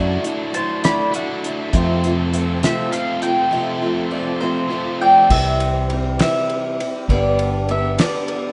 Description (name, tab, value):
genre	folk rock and heartland rock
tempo	67 BPM (dotted quarters)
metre	6/8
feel	straight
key	unclear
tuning	A4 = 436 Hz
part	picked acoustic archtop guitar	accompaniment	0.0-8.5 s	F2 to G4	-26 LUFS	equal	none
part	tonewheel organ	sustained chords	0.0-8.5 s	B3 to A4	-33 LUFS	equal	none
part	biting overdriven guitar	riff	0.0-5.3 s	F2 to F#4	-28 LUFS	equal	none
part	picked electric bass	bass	0.0-8.0 s	G1 to F#2	-23 LUFS	equal	none
part	cloth-damped thuddy drum kit	drums	0.2-8.4 s	crash cymbal, hi-hat, kick drum, ride cymbal, snare drum	-24 LUFS	equal	none
part	mandolin	melody	0.5-8.5 s	C5 to B5	-22 LUFS	equal	none
room	moderate lush hall reverb, RT60 1.9 s, small room ambience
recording	rough home demo mix, nothing above 10.6 kHz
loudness	-19 LUFS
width	mono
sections	0.0-5.3 A section; 5.3-8.5 B section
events	mandolin solo 0.0-5.3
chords	0.0 Dadd9/F#; 1.7 F; 5.3 C; 7.1 G